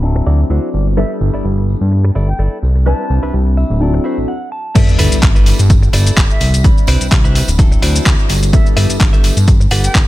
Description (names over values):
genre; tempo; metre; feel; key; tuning
filtered disco house; 127 BPM; 4/4; swing 55% on 16ths; G major; A4 = 436 Hz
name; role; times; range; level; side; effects
warm grand piano; accompaniment; 0.0-10.1 s; F#3 to B5; -21 LUFS; left 2 dB; phaser, sidechain pumping, low-pass filter
direct-recorded clean electric guitar; riff; 0.0-10.1 s; D4 to A5; -24 LUFS; right 1 dB; sidechain pumping, low-pass filter
fat analog bass; bass; 0.0-10.0 s; D1 to G2; -13 LUFS; equal; tube saturation, sidechain pumping, low-pass filter
tambourine; percussion; 0.0-10.1 s; none; -28 LUFS; right 7 dB; sidechain pumping on perc, low-pass filter on perc
silver concert flute; melody; 1.0-10.0 s; E5 to A5; -27 LUFS; equal; sidechain pumping, low-pass filter, analog delay
dusty soul sampler-style drum kit; drums; 4.8-10.1 s; crash cymbal, handclaps, hi-hat, shaker; -19 LUFS; left 2 dB; sidechain pumping on hats, low-pass filter on hats, sidechain pumping on cymbals, low-pass filter on cymbals, sidechain pumping on perc, low-pass filter on perc, low-pass filter on snare, analog delay
electronic kick drum; drums; 4.8-10.1 s; none; -11 LUFS; equal; none
sub drop; sound effects; 4.8-6.6 s; none; -19 LUFS; equal; none
room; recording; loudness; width
digital ambience; echo-heavy mix; -10 LUFS; side -16 dB against mid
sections
0.0-4.8 A section; 4.8-10.1 B section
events
filter sweep 0.0-4.8; clean electric guitar fill 0.3-1.0, 3.3-4.8; stop 4.3-4.8; drop 4.8-10.1; impact 4.8-6.6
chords
0.0 D9; 1.0 G69; 2.9 Cmaj9; 3.8 D9; 4.8 G69; 6.6 Cmaj9; 7.6 D9; 8.5 G69